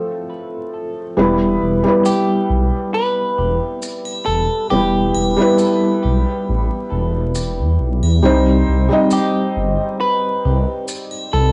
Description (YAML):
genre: trip hop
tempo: 68 BPM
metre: 4/4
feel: swing 53% on 16ths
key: E harmonic minor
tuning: A4 = 440 Hz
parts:
  - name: semi-hollow electric guitar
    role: melody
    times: 0.0-11.5 s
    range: G4 to B4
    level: -25 LUFS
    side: equal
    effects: vintage 12-bit sampler grit, cassette tape, tape echo
  - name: felt-muted upright piano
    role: accompaniment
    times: 0.0-11.5 s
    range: F3 to Eb5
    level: -20 LUFS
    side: equal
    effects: harmonic tremolo, cassette tape, tape echo
  - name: dark detuned saw bass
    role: bass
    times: 1.2-11.5 s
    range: E1 to E2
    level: -20 LUFS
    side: equal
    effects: transformer saturation
  - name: maracas and triangle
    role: percussion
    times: 2.1-11.3 s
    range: none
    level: -33 LUFS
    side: equal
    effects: none
room: light reverb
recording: home recording on cassette, vinyl crackle, nothing above 10.4 kHz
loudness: -17 LUFS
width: mono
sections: 0.0-1.2 A section; 1.2-11.5 B section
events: break 0.0-1.2; filter sweep on felt piano 0.0-1.2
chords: 0.0 F; 1.2 Em; 8.2 Cm